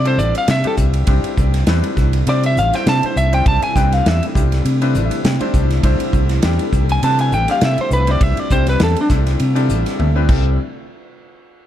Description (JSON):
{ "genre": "electric jazz fusion", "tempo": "101 BPM", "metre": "4/4", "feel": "swing 55% on 16ths", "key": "C major", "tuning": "A4 = 444 Hz", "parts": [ { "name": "lightly driven lead guitar", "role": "melody", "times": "0.0-9.1 s", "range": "D4 to A5", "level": "-19 LUFS", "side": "equal", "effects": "slapback echo" }, { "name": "bright grand piano", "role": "accompaniment", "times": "0.0-10.6 s", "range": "G3 to A5", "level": "-23 LUFS", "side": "left 3 dB", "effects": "none" }, { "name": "fingered electric bass", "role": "bass", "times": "0.0-10.6 s", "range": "A1 to C3", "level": "-16 LUFS", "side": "equal", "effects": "none" }, { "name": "modern studio drum kit", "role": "drums", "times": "0.1-10.4 s", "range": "crash cymbal, hi-hat, kick drum, ride cymbal, snare drum, toms", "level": "-20 LUFS", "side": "equal", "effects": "none" }, { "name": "string machine, cellos", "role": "sustained chords", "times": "1.1-10.6 s", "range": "C3 to E4", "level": "-28 LUFS", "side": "right 1 dB", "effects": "phaser, ensemble chorus" } ], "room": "little or no reverb", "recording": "dark, warm production", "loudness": "-13 LUFS", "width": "side -11 dB against mid", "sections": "0.0-10.6 A section; 10.6-11.7 B section", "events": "lead electric guitar solo 0.0-10.6; grand piano fill 4.6-5.8, 9.4-10.6; drum fill 10.0-10.6", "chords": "0.0 C69; 10.6 N.C." }